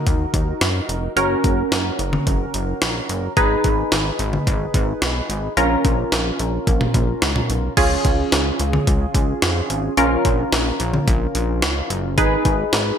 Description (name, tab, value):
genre	synth-pop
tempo	109 BPM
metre	4/4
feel	straight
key	unclear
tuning	A4 = 440 Hz
part	funky polysynth comp	accompaniment	0.0-13.0 s	C#4 to B4	-21 LUFS	right 1 dB	chorus
part	chorused synth bass	bass	0.1-12.9 s	E#1 to F#2	-23 LUFS	equal	none
part	jungle sampler-style drum kit	drums	0.1-12.9 s	crash cymbal, hi-hat, kick drum, snare drum, toms	-20 LUFS	equal	gated reverb
room	moderate plate reverb, RT60 1.5 s, digital ambience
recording	bright 1980s-style digital production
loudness	-17 LUFS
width	side -8 dB against mid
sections	0.0-7.8 A section; 7.8-13.0 B section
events	none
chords	0.0 D#m; 1.2 F#; 3.4 G#m; 5.6 A#m; 7.8 C#; 10.0 A#m; 12.2 G#m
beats	0.07 0.62 | 1.17 1.72 2.27 2.82 | 3.37 3.92 4.47 5.02 | 5.57 6.12 6.67 7.22 | 7.77 8.32 8.87 9.42 | 9.97 10.53 11.07 11.62 | 12.18 12.73